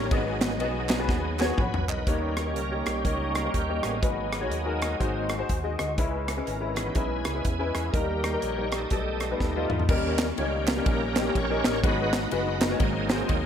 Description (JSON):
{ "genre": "uptempo gospel", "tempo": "123 BPM", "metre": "4/4", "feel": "swing 61% on 8ths", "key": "G# minor", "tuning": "A4 = 439 Hz", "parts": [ { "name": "clear concert grand piano", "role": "accompaniment", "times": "0.0-13.5 s", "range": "G#2 to B5", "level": "-30 LUFS", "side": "left 3 dB", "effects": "ensemble chorus" }, { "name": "bright tonewheel organ", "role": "sustained chords", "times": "0.0-13.5 s", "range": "E3 to G#5", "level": "-32 LUFS", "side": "right 2 dB", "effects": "slow rotary speaker, overdrive, chorus vibrato" }, { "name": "fingered electric bass", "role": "bass", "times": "0.0-13.5 s", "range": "F#1 to E2", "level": "-32 LUFS", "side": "equal", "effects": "none" }, { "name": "modern studio drum kit", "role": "drums", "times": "0.1-13.4 s", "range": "crash cymbal, hi-hat, kick drum, ride cymbal, rim click, snare drum, toms", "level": "-28 LUFS", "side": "equal", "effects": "none" }, { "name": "group handclap", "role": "percussion", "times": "0.4-2.0, 10.2-13.2 s", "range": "none", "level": "-38 LUFS", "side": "right 7 dB", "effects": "none" }, { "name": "mellow hollow flute section", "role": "sustained chords", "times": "2.1-9.9 s", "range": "A#4 to C#6", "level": "-37 LUFS", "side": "right 1 dB", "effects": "none" } ], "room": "moderate plate reverb, RT60 2.1 s", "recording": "dreamy mix soaked in reverb", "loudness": "-24 LUFS", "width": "side -8 dB against mid", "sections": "0.0-2.1 A section; 2.1-9.9 B section; 9.9-13.5 A section", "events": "drum fill 1.1-2.1, 9.4-9.9; tonewheel organ solo 2.1-9.9, 9.9-13.5", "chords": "0.1 G#m7; 2.1 D#7; 4.0 G#m7; 5.0 G#7; 6.0 C#m7; 7.9 D#; 8.9 Baug7; 9.9 D#7; 11.8 G#m7; 12.8 G#7", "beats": "| 0.12 0.60 1.09 1.58 | 2.07 2.56 3.04 3.53 | 4.02 4.51 5.00 5.49 | 5.98 6.47 6.96 7.45 | 7.94 8.43 8.91 9.40 | 9.89 10.38 10.86 11.35 | 11.84 12.32 12.81 13.29" }